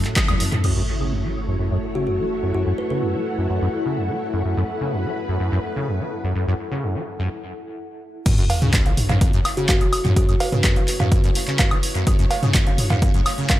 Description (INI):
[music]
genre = acid house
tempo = 126 BPM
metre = 4/4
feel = straight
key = F# minor pentatonic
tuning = A4 = 439 Hz
[part]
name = string machine, full ensemble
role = sustained chords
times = 0.0-13.6 s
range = A3 to C#5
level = -31 LUFS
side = equal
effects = ensemble chorus, sidechain pumping
[part]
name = acid bass, saw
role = riff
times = 0.0-13.6 s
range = E2 to F#3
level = -24 LUFS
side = equal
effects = ensemble chorus, sidechain pumping, tape echo
[part]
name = punchy analog drum machine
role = drums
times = 0.0-0.7, 8.3-13.6 s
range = cowbell, crash cymbal, handclaps, hi-hat, toms, woodblock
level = -22 LUFS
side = right 1 dB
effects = overdrive, dub echo
[part]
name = electronic kick drum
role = drums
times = 0.2-0.3, 8.3-13.6 s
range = none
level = -19 LUFS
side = equal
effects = overdrive
[part]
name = impact and sub drop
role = sound effects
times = 0.6-2.5, 8.3-10.2 s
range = none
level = -27 LUFS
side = equal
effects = none
[part]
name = granular cloud pad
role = texture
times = 1.4-7.3 s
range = E4 to F#5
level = -30 LUFS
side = left 2 dB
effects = built-in reverb, sidechain pumping
[part]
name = kalimba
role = melody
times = 2.0-3.0, 9.6-10.6 s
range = F#4 to B4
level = -28 LUFS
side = left 1 dB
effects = dub echo
[sound]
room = light reverb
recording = echo-heavy mix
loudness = -18 LUFS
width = side -14 dB against mid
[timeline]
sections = 0.6-8.3 A section; 8.3-13.6 B section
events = drum fill 0.2-0.6; band accent 0.2; impact 0.6-2.5, 8.3-10.2; filter sweep on acid bass 0.6-8.3; break 7.3-8.3; drop 8.3-13.6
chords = 0.0 F#m7